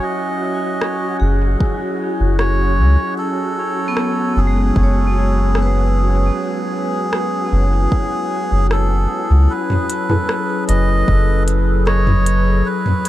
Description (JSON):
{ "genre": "ambient dub", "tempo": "76 BPM", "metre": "4/4", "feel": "straight", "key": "F# dorian", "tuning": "A4 = 440 Hz", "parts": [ { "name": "melodica", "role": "melody", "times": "0.0-13.1 s", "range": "G#4 to D#5", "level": "-22 LUFS", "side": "right 1 dB", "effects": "dub echo" }, { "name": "warbly tape-like pad", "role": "sustained chords", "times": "0.0-13.1 s", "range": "F#3 to C#5", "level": "-23 LUFS", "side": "left 2 dB", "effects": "chorus, built-in reverb" }, { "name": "vibraphone with hard mallets", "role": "arpeggios", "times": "0.0-9.5 s", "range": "G#3 to C#6", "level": "-26 LUFS", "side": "equal", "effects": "dub echo" }, { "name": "wind-like tuned noise texture", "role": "texture", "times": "0.0-9.5 s", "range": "F#4", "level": "-29 LUFS", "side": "right 1 dB", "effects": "built-in reverb" }, { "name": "organic electronic drum kit", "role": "drums", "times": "0.8-13.1 s", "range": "hi-hat, rim click, toms", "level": "-21 LUFS", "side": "equal", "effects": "none" }, { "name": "soft dub sub bass", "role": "bass", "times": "1.2-12.6 s", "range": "F#1 to C#2", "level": "-15 LUFS", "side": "equal", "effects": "none" }, { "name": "electronic kick drum", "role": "drums", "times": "1.6-11.2 s", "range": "none", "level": "-18 LUFS", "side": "equal", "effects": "overdrive" }, { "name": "filtered dub chord stab", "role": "stabs", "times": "10.1-10.3 s", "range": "E4 to B4", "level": "-26 LUFS", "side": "left 1 dB", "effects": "none" } ], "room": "digital ambience", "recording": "none", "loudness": "-14 LUFS", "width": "side -14 dB against mid", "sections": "0.0-9.5 A section; 9.5-13.1 B section", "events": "none", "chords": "0.0 C#m/F#; 9.5 F#m11" }